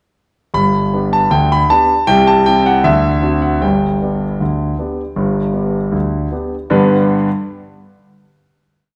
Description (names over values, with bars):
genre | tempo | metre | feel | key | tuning
ragtime piano | 78 BPM | 2/4 | straight | G major | A4 = 443 Hz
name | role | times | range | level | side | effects
warm concert grand piano | solo | 0.5-7.3 s | G1 to B5 | -14 LUFS | equal | none
room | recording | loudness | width
wet recital hall reverb, RT60 1.5 s | recorded in a church or concert hall | -15 LUFS | mono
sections
0.5-6.7 A section; 6.7-8.3 final chord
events
none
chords
0.5 G; 2.1 C; 2.9 D7; 3.6 G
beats
| 0.54 1.31 | 2.08 2.85 | 3.63 4.40 | 5.18 5.95 | 6.72